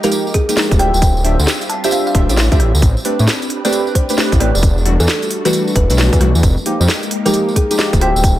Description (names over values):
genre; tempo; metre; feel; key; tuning
UK garage, two-step garage; 133 BPM; 4/4; swing 65% on 16ths; unclear; A4 = 440 Hz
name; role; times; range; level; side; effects
kalimba; melody; 0.0-8.2 s; Ab4 to A5; -21 LUFS; equal; digital delay
soft string machine; sustained chords; 0.0-8.4 s; G3 to E5; -26 LUFS; equal; phaser, ensemble chorus, sidechain pumping
deep mellow chord stab; stabs; 0.0-8.1 s; E3 to E5; -18 LUFS; equal; chorus
garage drum kit; drums; 0.0-8.4 s; hi-hat, rim click, snare drum; -20 LUFS; equal; none
tambourine; percussion; 0.0-8.4 s; none; -25 LUFS; right 2 dB; none
electronic kick drum; drums; 0.3-8.4 s; none; -14 LUFS; equal; none
dark detuned saw bass; bass; 0.7-8.4 s; D1 to A2; -14 LUFS; equal; none
room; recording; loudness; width
light reverb; none; -12 LUFS; side -14 dB against mid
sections
0.0-8.4 A section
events
none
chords
0.0 Fm11; 0.8 Dm11; 2.8 Am11; 4.6 Em11; 6.4 Fm11